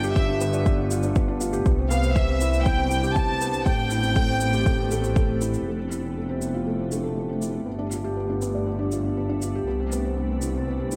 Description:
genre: piano and strings electronica.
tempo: 120 BPM.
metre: 4/4.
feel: straight.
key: C major.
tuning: A4 = 440 Hz.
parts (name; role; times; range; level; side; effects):
clear studio violin section; melody; 0.0-5.4 s; E5 to A5; -30 LUFS; equal; none.
granular cloud pad; sustained chords; 0.0-11.0 s; A3 to G4; -35 LUFS; equal; built-in reverb, sidechain pumping.
felt-muted upright piano; riff; 0.0-11.0 s; A3 to D5; -30 LUFS; equal; digital delay.
clear studio double bass section; bass; 0.0-11.0 s; F1 to C2; -29 LUFS; equal; sidechain pumping.
shaker; drums; 0.0-11.0 s; none; -40 LUFS; equal; overdrive.
electronic kick drum; drums; 0.2-5.3 s; none; -24 LUFS; equal; overdrive.
room: light reverb, small room reverb.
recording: none.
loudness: -24 LUFS.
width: mono.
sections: 0.0-5.7 A section; 5.7-11.0 B section.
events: filter sweep on felt piano 0.0-5.7.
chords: 0.0 G7; 1.7 Cmaj7; 3.7 Am7; 5.7 Fmaj9; 7.7 G7; 9.7 Cmaj7.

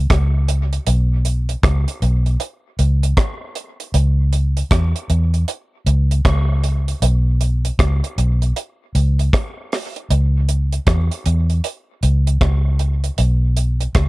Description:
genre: dub reggae.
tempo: 78 BPM.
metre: 4/4.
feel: swing 63% on 16ths.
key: C# minor.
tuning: A4 = 440 Hz.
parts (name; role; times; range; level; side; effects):
vintage muted fingered electric bass; bass; 0.0-14.1 s; B1 to E2; -15 LUFS; equal; none.
deep reggae drum kit; drums; 0.1-14.1 s; hi-hat, kick drum, rim click; -19 LUFS; right 1 dB; none.
room: little or no reverb.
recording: none.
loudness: -16 LUFS.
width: side -20 dB against mid.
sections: 0.0-14.1 A section.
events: none.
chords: none.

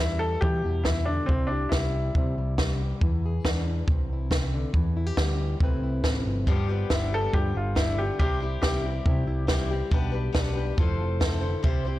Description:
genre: indie folk with a building arrangement.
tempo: 139 BPM.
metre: 4/4.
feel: straight.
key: C major.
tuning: A4 = 441 Hz.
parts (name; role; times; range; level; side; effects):
clear upright piano; melody; 0.0-2.7, 6.9-9.7 s; C4 to A4; -30 LUFS; left 1 dB; none.
fingerpicked plugged-in steel-string acoustic guitar; accompaniment; 0.0-12.0 s; B2 to B4; -33 LUFS; left 3 dB; none.
picked electric bass; bass; 0.0-12.0 s; F1 to E3; -28 LUFS; equal; none.
compact cocktail drum kit; drums; 0.4-11.7 s; kick drum, snare drum; -26 LUFS; equal; none.
picked acoustic archtop guitar; accompaniment; 6.5-12.0 s; G2 to C5; -34 LUFS; left 4 dB; none.
room: light reverb, studio ambience.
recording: blown-out, overdriven recording, overdrive.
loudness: -23 LUFS.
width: side -15 dB against mid.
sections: 0.0-12.0 A section.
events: none.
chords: 0.0 Em; 1.3 C; 3.0 E7; 3.9 Cadd9; 4.7 Em; 5.6 Amadd9/C; 6.5 G7; 8.2 C; 9.9 G/B; 10.8 Fmaj7.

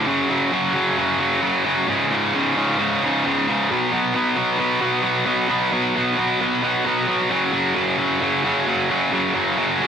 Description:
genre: metal.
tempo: 132 BPM.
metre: 4/4.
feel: straight.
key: unclear.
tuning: A4 = 440 Hz.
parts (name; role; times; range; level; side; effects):
heavy high-gain guitar; solo; 0.0-9.9 s; C#2 to B3; -18 LUFS; equal; distortion, cassette tape.
room: light reverb.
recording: home recording on cassette.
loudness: -18 LUFS.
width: side -7 dB against mid.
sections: 0.1-9.9 A section.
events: none.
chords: 0.1 F#5; 1.9 C#5; 3.7 B5; 7.3 F#5.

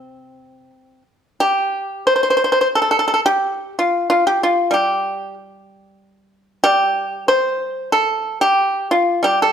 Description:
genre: chinese traditional, Chinese solo plucked strings.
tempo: 92 BPM.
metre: 4/4.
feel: uneven beats, rubato.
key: unclear.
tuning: A4 = 440 Hz.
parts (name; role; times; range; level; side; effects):
pipa; solo; 0.0-9.5 s; C3 to C5; -15 LUFS; equal; none.
room: moderate recital hall reverb, RT60 1.2 s.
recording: none.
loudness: -15 LUFS.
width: side -8 dB against mid.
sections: 0.0-1.4 A section; 1.4-9.5 B section.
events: none.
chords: none.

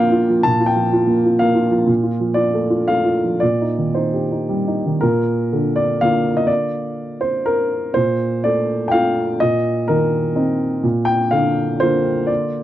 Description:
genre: neoclassical minimalist piano.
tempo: 124 BPM.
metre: 3/4.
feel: rubato.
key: Bb major.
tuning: A4 = 440 Hz.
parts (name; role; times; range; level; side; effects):
dark baby grand piano; solo; 0.0-12.6 s; Bb2 to A5; -16 LUFS; equal; none.
room: light reverb.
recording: dry, close 1970s-style studio recording.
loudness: -16 LUFS.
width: side -13 dB against mid.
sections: 0.0-5.0 A section; 5.0-12.6 B section.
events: none.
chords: 0.0 Bb; 1.9 Dm/Bb; 3.4 Cm/Bb; 5.0 Bb; 8.0 Bbmaj13; 9.4 Cm/Bb; 10.8 Bb.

